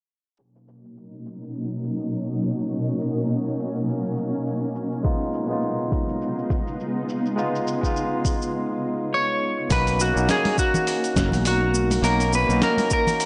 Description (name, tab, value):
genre	sunset chillout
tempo	103 BPM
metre	4/4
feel	swing 57% on 16ths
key	B lydian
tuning	A4 = 440 Hz
part	shimmering ambient pad	sustained chords	1.2-13.3 s	B2 to E#4	-29 LUFS	equal	chorus, built-in reverb
part	dusty soul sampler-style drum kit	drums	0.4-13.3 s	hi-hat, shaker, snare drum	-30 LUFS	equal	none
part	barky tine electric piano	accompaniment	5.0-13.3 s	G#3 to F#4	-30 LUFS	equal	analog delay
part	electronic kick drum	drums	5.0-13.0 s	none	-28 LUFS	equal	overdrive
part	clean electric guitar	melody	9.1-13.3 s	F#4 to C#5	-25 LUFS	equal	none
part	fretless electric bass	bass	9.7-12.6 s	F#1 to B1	-26 LUFS	equal	tube saturation
part	twinkling granular texture	texture	10.3-13.3 s	A#4 to A#5	-42 LUFS	equal	none
part	congas	percussion	10.5-13.2 s	none	-30 LUFS	equal	none
room	light reverb, digital ambience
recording	dry, gritty hardware recording, low-pass filter, nothing above 10.5 kHz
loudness	-23 LUFS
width	mono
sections	0.4-9.7 A section; 9.7-13.3 B section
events	filter sweep 0.4-9.7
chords	0.4 Bmaj7; 5.0 C#7; 9.7 Bmaj7